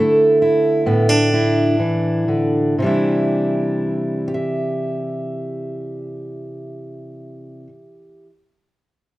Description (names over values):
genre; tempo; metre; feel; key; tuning
folk; 60-67 BPM; 4/4; straight; C major; A4 = 441 Hz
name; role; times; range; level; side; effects
fingerpicked steel-string acoustic guitar; accompaniment; 0.0-8.3 s; A2 to E5; -17 LUFS; equal; none
room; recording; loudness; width
wet large studio reverb, RT60 1.0 s; dark, warm production; -16 LUFS; side -17 dB against mid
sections
0.0-2.8 A section; 2.8-6.8 B section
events
slowing down 0.0-2.8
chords
0.0 Dsus2; 2.8 Cadd9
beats
0.87 1.81 | 2.79 3.78 4.78 5.77